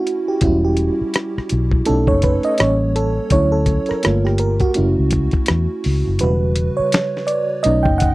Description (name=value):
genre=R&B, neo-soul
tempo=83 BPM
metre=4/4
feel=swing 58% on 16ths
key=E dorian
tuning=A4 = 440 Hz
part: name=FM electric piano with soft pad layer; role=accompaniment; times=0.0-8.1 s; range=C#3 to G5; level=-18 LUFS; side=right 2 dB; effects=chorus, tremolo
part: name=dusty soul sampler-style drum kit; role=drums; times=0.1-8.1 s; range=hi-hat, kick drum, rim click, snare drum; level=-19 LUFS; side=left 1 dB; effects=none
part: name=vintage muted fingered electric bass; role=bass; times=0.4-8.1 s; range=E1 to E2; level=-18 LUFS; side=left 1 dB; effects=none
room=little or no reverb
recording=dry, close 1970s-style studio recording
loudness=-15 LUFS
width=side -19 dB against mid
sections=0.0-8.1 A section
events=FM electric piano solo 0.0-8.1; kick muted 6.2-7.7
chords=0.4 Em69; 1.9 B9; 2.6 A7b9; 3.3 Dmaj9; 4.0 Gm7; 4.8 F#m7; 6.2 Em69